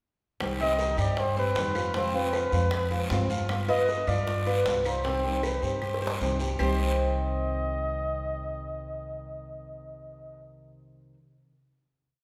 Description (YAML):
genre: latin, Cuban son and guajira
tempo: 155 BPM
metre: 4/4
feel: straight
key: C harmonic minor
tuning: A4 = 445 Hz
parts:
  - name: flamenco guitar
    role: accompaniment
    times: 0.4-11.2 s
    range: C3 to G4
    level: -37 LUFS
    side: equal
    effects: none
  - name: upright bass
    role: bass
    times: 0.4-11.1 s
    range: C2 to G2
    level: -33 LUFS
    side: equal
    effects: none
  - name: bongos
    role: percussion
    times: 0.4-6.7 s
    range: none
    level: -40 LUFS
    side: equal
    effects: none
  - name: claves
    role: percussion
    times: 0.4-6.7 s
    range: none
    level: -47 LUFS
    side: equal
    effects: none
  - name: guiro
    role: percussion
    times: 0.4-6.7 s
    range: none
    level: -43 LUFS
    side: equal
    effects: none
  - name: breathy flugelhorn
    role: melody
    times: 0.6-10.4 s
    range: B4 to Eb5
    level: -34 LUFS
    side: equal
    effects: none
  - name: Cuban tres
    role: arpeggios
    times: 0.6-11.1 s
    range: B3 to C5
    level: -34 LUFS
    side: equal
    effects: none
room: wet recital hall reverb, RT60 1.7 s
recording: recorded in a church or concert hall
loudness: -28 LUFS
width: mono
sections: 0.4-6.6 A section; 6.6-9.7 final chord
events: drum fill 5.8-6.6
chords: 0.4 Cm; 1.9 Fm; 3.5 G7; 5.0 Cm